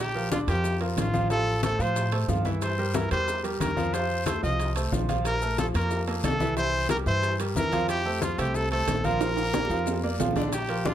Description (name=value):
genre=latin, salsa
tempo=182 BPM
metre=4/4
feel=straight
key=Bb major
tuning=A4 = 439 Hz
part: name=bright trumpet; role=melody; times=0.0-10.9 s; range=F4 to Eb5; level=-29 LUFS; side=equal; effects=none
part: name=upright bass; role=bass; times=0.0-10.9 s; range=A1 to A2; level=-30 LUFS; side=equal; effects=none
part: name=clear concert grand piano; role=accompaniment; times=0.2-10.9 s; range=D3 to F5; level=-30 LUFS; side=right 2 dB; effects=none
part: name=congas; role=percussion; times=0.2-10.9 s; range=none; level=-32 LUFS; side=left 4 dB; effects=none
part: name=bongos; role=percussion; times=0.3-10.9 s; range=none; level=-36 LUFS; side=left 4 dB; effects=none
part: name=guiro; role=percussion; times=0.3-10.9 s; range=none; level=-44 LUFS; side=left 7 dB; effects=none
part: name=maracas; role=percussion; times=0.3-10.9 s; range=none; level=-41 LUFS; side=left 5 dB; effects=none
part: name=timbales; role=percussion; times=0.3-10.9 s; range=none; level=-36 LUFS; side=right 7 dB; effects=none
room=light reverb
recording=close, detailed microphones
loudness=-24 LUFS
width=side -11 dB against mid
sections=0.0-10.5 A section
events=drum fill 9.2-10.5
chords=0.0 Bb; 1.3 F/A; 2.6 C7; 3.9 F7; 5.3 Bb5; 6.6 C7; 7.9 F; 9.2 Bb